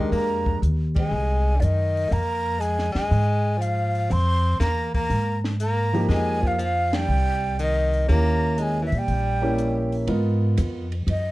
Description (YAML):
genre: modal jazz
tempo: 120 BPM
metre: 4/4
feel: swing 68% on 8ths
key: unclear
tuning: A4 = 440 Hz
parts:
  - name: breathy mellow silver concert flute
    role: melody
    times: 0.0-11.3 s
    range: D5 to C6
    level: -26 LUFS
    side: right 1 dB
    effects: none
  - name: edgy tenor saxophone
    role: second line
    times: 0.0-9.9 s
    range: D3 to C4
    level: -29 LUFS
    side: left 2 dB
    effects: none
  - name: clear concert grand piano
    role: accompaniment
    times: 0.0-0.6, 5.9-10.9 s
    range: F3 to D#5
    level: -26 LUFS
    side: equal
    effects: none
  - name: upright bass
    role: bass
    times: 0.0-11.3 s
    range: Bb1 to Bb2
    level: -23 LUFS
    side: equal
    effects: none
  - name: compact cocktail drum kit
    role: drums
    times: 0.1-11.2 s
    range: hi-hat, kick drum, ride cymbal, snare drum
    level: -29 LUFS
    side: equal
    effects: none
room: light reverb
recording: dark, warm production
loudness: -20 LUFS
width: side -18 dB against mid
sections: 0.0-10.1 A section; 10.1-11.3 B section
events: band accent 0.9, 6.8; flute solo 10.1-11.3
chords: 0.0 Fm11; 8.1 Eb7b9; 10.1 G#m9